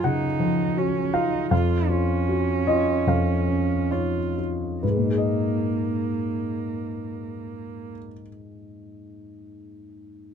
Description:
neoclassical piano and strings; 64-83 BPM; 4/4; rubato; G# dorian; A4 = 440 Hz
muted cello; second line; 0.0-7.9 s; A#3 to E#4; -28 LUFS; right 9 dB
warm grand piano; accompaniment; 0.0-10.3 s; E#2 to A#5; -24 LUFS; left 2 dB
light reverb; dark, warm production; -21 LUFS; side -7 dB against mid
0.0-4.8 A section; 4.8-8.3 B section
slowing down 0.0-4.8
0.0 F#maj7; 1.5 C#/E#; 4.8 G#madd9

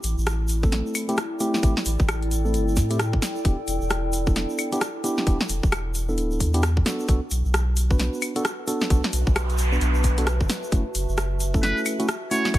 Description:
UK garage, two-step garage; 132 BPM; 4/4; swing 61% on 16ths; A4 = 440 Hz
saturated sub bass; bass; 0.0-12.6 s; D1 to A2; -24 LUFS; equal
garage drum kit; drums; 0.0-12.6 s; claves, hi-hat, rim click, snare drum; -27 LUFS; equal; studio reverb
egg shaker; percussion; 0.0-12.6 s; -37 LUFS; right 1 dB
warbly tape-like pad; texture; 0.1-12.6 s; E4 to A5; -33 LUFS; equal; chorus, built-in reverb, sidechain pumping
mellow tine electric piano; stabs; 0.6-12.6 s; A3 to B4; -28 LUFS; equal; dub echo
electronic kick drum; drums; 0.6-12.6 s; -21 LUFS; equal; studio reverb
noise sweep; sound effects; 9.2-10.7 s; -33 LUFS; right 2 dB
trumpet with metal mute; melody; 11.6-12.6 s; B4 to C#5; -26 LUFS; right 1 dB
little or no reverb; -21 LUFS; side -15 dB against mid
0.0-12.6 A section
noise sweep 9.2-10.7
0.0 Am7; 3.2 Em7; 6.9 Bm7; 10.7 F#m7

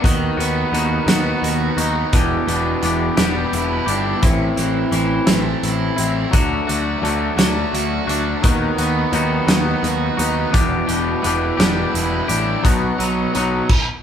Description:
indie rock; 57 BPM (dotted quarters); 6/8; straight; E minor; A4 = 440 Hz
overdriven electric guitar; riff; 0.0-13.7 s; E2 to F#4; -23 LUFS; right 4 dB
twangy electric guitar; riff; 0.0-13.7 s; E3 to G4; -21 LUFS; left 5 dB
fuzz picked electric bass; bass; 0.0-13.6 s; E1 to D#2; -22 LUFS; equal; overdrive
loose indie drum kit; drums; 0.0-13.9 s; crash cymbal, hi-hat, kick drum, snare drum; -19 LUFS; right 1 dB
moderate large studio reverb, RT60 1.2 s; band playing live in one room; -16 LUFS; side -8 dB against mid
0.0-14.0 A section
0.0 B/D#; 2.1 Em7; 4.2 Am; 6.3 D; 8.4 B/D#; 10.5 Em7; 12.6 B

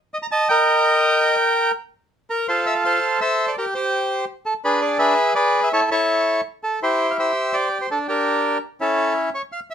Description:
tango; 167 BPM; 3/4; rubato; A4 = 437 Hz
bandoneon; solo; 0.1-9.7 s; C#4 to Bb5; -17 LUFS; equal
moderate studio ambience, RT60 0.5 s; minimal, uncompressed stereo recording; -18 LUFS; side -8 dB against mid
0.0-2.5 A section; 2.5-9.7 B section
0.3 Eb/Bb; 1.4 N.C.; 2.5 Fmaj7; 3.6 N.C.; 4.6 E7; 5.7 A; 6.8 C; 7.9 Gm; 9.0 A

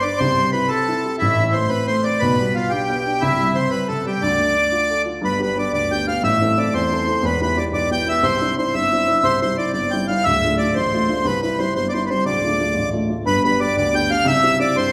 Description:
celtic folk; 120 BPM (dotted quarters); 6/8; straight; A4 = 440 Hz
accordion; melody; 0.0-14.9 s; E4 to G5; -21 LUFS; equal
dark upright piano; accompaniment; 0.0-14.9 s; D1 to A4; -24 LUFS; equal
wet recital hall reverb, RT60 1.5 s; recorded in a church or concert hall; -19 LUFS; mono
0.0-5.2 A section; 5.2-13.3 B section; 13.3-14.9 B section
0.2 C; 1.2 Am; 2.2 G/B; 3.2 C; 4.2 Dm; 5.2 G; 6.2 Am; 7.2 Em; 8.2 Cadd9; 9.2 C; 10.2 Dm; 11.2 C; 12.3 Dm; 13.3 G; 14.3 C

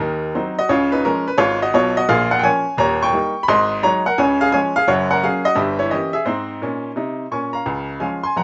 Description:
jazz, stride piano; 172 BPM; 4/4; swing 66% on 8ths; Db major; A4 = 442 Hz
bright upright piano; solo; 0.0-8.4 s; Eb1 to Db6; -18 LUFS; equal
moderate small room reverb, RT60 0.5 s; rough home demo mix, nothing above 7.8 kHz; -18 LUFS; mono
0.0-7.7 A section
0.0 Cdim/Eb; 0.7 C#; 2.1 Bbm7; 2.8 Eb7; 3.5 Ab7; 4.2 Db; 4.9 Gb; 5.6 Gdim7; 6.3 Ab; 7.7 Db

